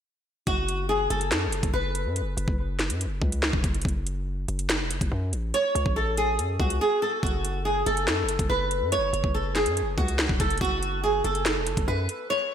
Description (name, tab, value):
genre	hip hop, drill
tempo	142 BPM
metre	4/4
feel	half-time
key	F# minor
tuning	A4 = 441 Hz
part	flamenco guitar	melody	0.5-2.1, 5.5-12.5 s	F#4 to C#5	-26 LUFS	right 1 dB	lush chorus, analog delay
part	distorted 808-style bass	bass	0.5-12.1 s	E1 to F#2	-29 LUFS	equal	distortion
part	drill drum kit	drums	0.5-12.2 s	hi-hat, kick drum, snare drum	-27 LUFS	equal	overdrive, vintage 12-bit sampler grit
room	moderate lush hall reverb, RT60 1.5 s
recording	dreamy mix soaked in reverb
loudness	-23 LUFS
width	side -8 dB against mid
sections	0.5-12.5 A section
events	drums muted 6.8-7.2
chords	0.5 F#m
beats	| 0.47 0.89 1.31 1.74 | 2.16 2.58 3.00 3.43 | 3.85 4.27 4.70 5.12 | 5.54 5.96 6.38 6.81 | 7.23 7.65 8.07 8.50 | 8.92 9.34 9.77 10.19 | 10.61 11.03 11.46 11.88 | 12.30